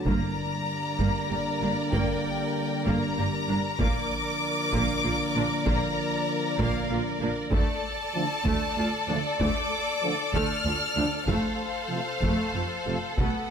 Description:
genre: cinematic, epic orchestral film score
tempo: 64 BPM (dotted quarters)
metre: 6/8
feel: straight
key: G minor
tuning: A4 = 440 Hz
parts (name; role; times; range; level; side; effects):
- bright symphonic violin section; melody; 0.0-13.5 s; F5 to F6; -32 LUFS; left 3 dB; none
- mellow French horn section; sustained chords; 0.0-13.0 s; A3 to F4; -34 LUFS; left 4 dB; none
- clear symphonic violin section; second line; 0.1-13.5 s; A4 to D5; -32 LUFS; left 1 dB; none
- clear symphonic viola section; accompaniment; 0.1-13.5 s; A3 to G4; -33 LUFS; right 2 dB; none
- dark trombone section; sustained chords; 0.1-13.0 s; C3 to G3; -35 LUFS; right 6 dB; none
- rich symphonic cello section; bass; 0.1-13.3 s; D2 to B2; -33 LUFS; right 2 dB; none
- rich symphonic double bass section; bass; 0.1-13.3 s; F1 to D2; -34 LUFS; right 3 dB; none
- taiko ensemble; drums; 0.1-13.5 s; none; -31 LUFS; equal; none
- timpani; percussion; 0.1-1.0 s; G2; -35 LUFS; equal; none
room: light reverb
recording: close, detailed microphones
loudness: -24 LUFS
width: side -7 dB against mid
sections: 0.1-13.5 A section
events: none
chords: 0.1 Gm; 3.8 Bb; 7.5 Dm; 11.3 F

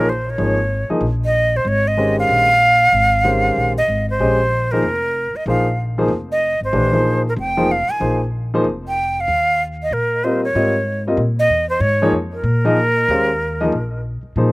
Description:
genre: jazz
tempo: 189 BPM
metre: 4/4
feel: swing 62% on 8ths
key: unclear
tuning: A4 = 440 Hz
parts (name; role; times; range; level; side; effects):
- breathy bright jazz flute; melody; 0.0-14.0 s; Bb4 to Ab5; -17 LUFS; right 1 dB; none
- warm concert grand piano; accompaniment; 0.0-14.5 s; Eb3 to F5; -19 LUFS; left 1 dB; none
- upright bass; bass; 0.0-14.5 s; F1 to Bb2; -21 LUFS; equal; none
room: little or no reverb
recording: recorded outdoors, with no room sound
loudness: -15 LUFS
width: side -22 dB against mid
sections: 0.0-14.4 A section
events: none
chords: 0.0 Eb9sus4; 4.2 Bb9sus4; 9.3 Ebsus4

